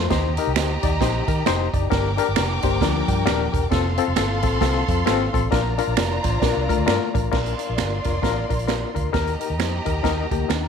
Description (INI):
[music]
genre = uptempo 1960s-style soul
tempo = 133 BPM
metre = 4/4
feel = swing 60% on 8ths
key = Bb major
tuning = A4 = 440 Hz
[part]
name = warm studio violin section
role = second line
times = 0.0-10.7 s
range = F4 to D6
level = -28 LUFS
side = right 1 dB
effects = none
[part]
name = barky reed electric piano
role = accompaniment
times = 0.0-10.7 s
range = C4 to C6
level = -24 LUFS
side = left 12 dB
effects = overdrive, fast tremolo
[part]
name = hollow-body jazz guitar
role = riff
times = 0.0-3.5, 6.2-7.3, 10.3-10.7 s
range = F3 to C5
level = -27 LUFS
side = left 14 dB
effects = none
[part]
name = vintage muted fingered electric bass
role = bass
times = 0.0-10.7 s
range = Eb1 to Eb3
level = -25 LUFS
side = right 1 dB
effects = tube saturation
[part]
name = swinging big-band drum kit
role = drums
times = 0.1-10.6 s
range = crash cymbal, hi-hat, kick drum, snare drum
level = -24 LUFS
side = right 6 dB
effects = none
[part]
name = finger snaps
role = percussion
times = 0.6-10.6 s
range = none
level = -28 LUFS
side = right 16 dB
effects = none
[sound]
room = light reverb, small room ambience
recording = 1960s-style stereo with parts hard left and right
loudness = -19 LUFS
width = side -7 dB against mid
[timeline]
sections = 0.0-7.3 A section; 7.3-10.7 B section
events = reed electric piano fill 2.4-3.7, 6.7-7.3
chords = 0.1 Eb6; 1.9 Gm; 3.7 F; 5.5 Bb; 9.1 Eb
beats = | 0.11 0.56 1.01 1.46 | 1.91 2.36 2.81 3.27 | 3.72 4.17 4.62 5.07 | 5.52 5.97 6.42 6.88 | 7.33 7.78 8.23 8.69 | 9.14 9.59 10.05 10.50